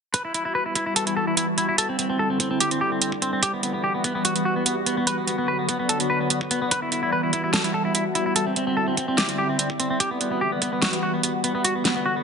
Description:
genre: heavy wobble dubstep.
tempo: 146 BPM.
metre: 4/4.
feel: half-time.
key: E minor.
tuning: A4 = 440 Hz.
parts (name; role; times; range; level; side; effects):
clean electric guitar; melody; 0.1-12.2 s; B3 to B4; -25 LUFS; equal; tape echo.
evolving wavetable pad; sustained chords; 0.5-12.2 s; D3 to F#4; -27 LUFS; left 1 dB; phaser, built-in reverb, tremolo, vintage 12-bit sampler grit, sidechain pumping.
dubstep drum kit; drums; 0.1-11.9 s; hi-hat, snare drum; -23 LUFS; right 2 dB; none.
electronic kick drum; drums; 0.1-10.7 s; none; -30 LUFS; equal; high-pass filter on kick.
airy breathy pad; texture; 0.1-12.2 s; G3 to F#5; -31 LUFS; right 1 dB; chorus, sidechain pumping.
room: moderate lush hall reverb, RT60 1.8 s.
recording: nothing above 11.0 kHz.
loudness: -21 LUFS.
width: side -6 dB against mid.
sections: 0.1-12.2 A section.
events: fade-in on analog synth pad 0.1-12.2.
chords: 0.1 Emadd9; 1.8 Cadd9; 3.4 Emadd9; 5.1 Bm; 6.7 Emadd9; 8.4 Cadd9; 10.0 Emadd9; 11.6 Bm.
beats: | 0.14 0.55 0.96 1.37 | 1.78 2.19 2.60 3.02 | 3.43 3.84 4.25 4.66 | 5.07 5.48 5.89 6.30 | 6.71 7.12 7.54 7.95 | 8.36 8.77 9.18 9.59 | 10.00 10.41 10.82 11.23 | 11.64 12.06.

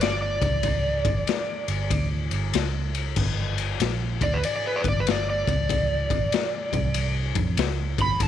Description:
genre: blues rock power trio and southern rock.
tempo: 95 BPM.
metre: 4/4.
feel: swing 65% on 8ths.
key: G major.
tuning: A4 = 441 Hz.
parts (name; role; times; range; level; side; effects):
overdriven slide guitar; melody; 0.0-8.3 s; B4 to B5; -27 LUFS; right 1 dB; none.
vintage muted fingered electric bass; bass; 0.0-8.3 s; G1 to F2; -26 LUFS; right 2 dB; none.
raw garage drum kit; drums; 0.0-8.3 s; crash cymbal, kick drum, ride cymbal, snare drum; -26 LUFS; left 6 dB; none.
room: light reverb, small room ambience.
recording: 1960s-style stereo.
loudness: -22 LUFS.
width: side -10 dB against mid.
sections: 0.0-8.3 A section.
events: electric slide guitar solo 0.0-8.3.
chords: 0.0 G5.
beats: 0.02 | 0.65 1.28 1.91 2.54 | 3.17 3.80 4.43 5.06 | 5.69 6.32 6.95 7.58 | 8.21.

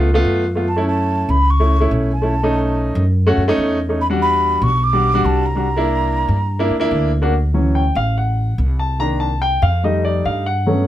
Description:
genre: Afro-Cuban jazz.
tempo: 144 BPM.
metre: 4/4.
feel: straight.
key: D major.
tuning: A4 = 440 Hz.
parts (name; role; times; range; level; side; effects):
warm grand piano; accompaniment; 0.0-10.9 s; Eb3 to Bb5; -18 LUFS; equal; none.
upright bass; bass; 0.0-10.9 s; A1 to G2; -18 LUFS; equal; none.
breathy mellow concert flute; melody; 0.7-6.9 s; A5 to D6; -20 LUFS; right 1 dB; none.
room: moderate small room ambience, RT60 0.5 s.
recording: none.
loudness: -15 LUFS.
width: side -12 dB against mid.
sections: 0.0-7.3 A section; 7.3-10.9 B section.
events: grand piano solo 7.3-10.9.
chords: 0.0 C#aug7; 0.7 F#m7; 2.3 B7; 4.0 Em7; 5.7 C9; 7.3 Dmaj7; 9.0 Cm7; 9.8 F9.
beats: 0.25 | 0.66 1.08 1.50 1.91 | 2.33 2.75 3.16 3.58 | 4.00 4.41 4.83 5.25 | 5.66 6.08 6.50 6.91 | 7.33 7.75 8.16 8.58 | 9.00 9.42 9.83 10.25 | 10.67.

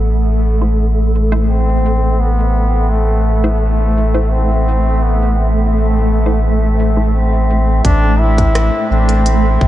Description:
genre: ambient dub.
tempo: 85 BPM.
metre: 4/4.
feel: straight.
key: A minor.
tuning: A4 = 436 Hz.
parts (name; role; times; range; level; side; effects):
granular cloud pad; sustained chords; 0.0-9.7 s; A3 to E5; -20 LUFS; right 1 dB; built-in reverb.
soft dub sub bass; bass; 0.0-9.7 s; A1; -13 LUFS; equal; none.
filtered dub chord stab; stabs; 0.6-7.1 s; A3 to C5; -27 LUFS; equal; phaser, dub echo.
clear trombone; melody; 1.5-9.7 s; A3 to E4; -20 LUFS; left 1 dB; dub echo.
electronic kick drum; drums; 7.8-9.7 s; none; -15 LUFS; equal; studio reverb.
organic electronic drum kit; drums; 7.8-9.4 s; hi-hat, rim click; -25 LUFS; equal; studio reverb, dub echo.
room: moderate huge ambient reverb, RT60 7.8 s.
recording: dreamy mix soaked in reverb, nothing above 10.5 kHz.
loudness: -11 LUFS.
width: side -14 dB against mid.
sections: 0.0-7.8 A section; 7.8-9.7 B section.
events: filter sweep on ambient pad 0.0-7.8.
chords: 0.0 Am.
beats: 0.08 0.79 1.49 | 2.20 2.91 3.61 4.32 | 5.02 5.73 6.43 7.14 | 7.85 8.55 9.26.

